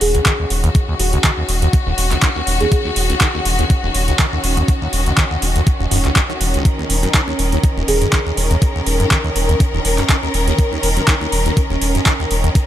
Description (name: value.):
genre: acid house.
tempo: 122 BPM.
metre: 4/4.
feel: swing 55% on 16ths.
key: Eb minor.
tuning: A4 = 440 Hz.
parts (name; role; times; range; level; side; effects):
kalimba; melody; 0.0-3.3, 7.9-9.2 s; Gb4 to Bb4; -24 LUFS; right 1 dB; ping-pong delay.
clear symphonic string section; sustained chords; 0.0-12.7 s; Eb3 to Bb4; -21 LUFS; left 1 dB; sidechain pumping.
saturated sub bass; bass; 0.0-12.5 s; Eb1; -19 LUFS; equal; sidechain pumping.
booming analog drum machine; drums; 0.0-12.7 s; handclaps, hi-hat; -20 LUFS; right 1 dB; none.
liquid acid bass; riff; 0.1-12.5 s; Db2 to Eb3; -21 LUFS; equal; phaser, sidechain pumping, digital delay.
electronic kick drum; drums; 0.3-12.7 s; none; -15 LUFS; equal; overdrive.
room: digital ambience.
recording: none.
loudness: -14 LUFS.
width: side -12 dB against mid.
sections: 0.0-12.7 A section.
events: none.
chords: 0.0 Ebm7.